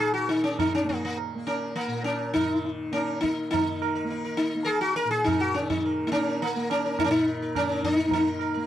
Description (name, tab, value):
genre	indian classical, Hindustani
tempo	104 BPM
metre	4/4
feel	straight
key	unclear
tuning	A4 = 440 Hz
part	sitar	melody	0.0-8.7 s	Bb3 to Bb4	-25 LUFS	left 2 dB	none
part	tanpura	drone	0.0-8.7 s	Bb2 to Bb3	-34 LUFS	right 1 dB	none
part	tabla	percussion	0.3-8.6 s	none	-32 LUFS	right 9 dB	none
room	little or no reverb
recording	dry, close 1970s-style studio recording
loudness	-24 LUFS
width	side -11 dB against mid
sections	0.0-3.5 A section; 3.5-8.7 B section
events	speeding up 0.0-8.7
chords	none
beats	0.58 | 1.17 1.76 2.35 2.94 | 3.53 4.11 4.69 5.27 | 5.84 6.41 6.99 7.55 | 8.12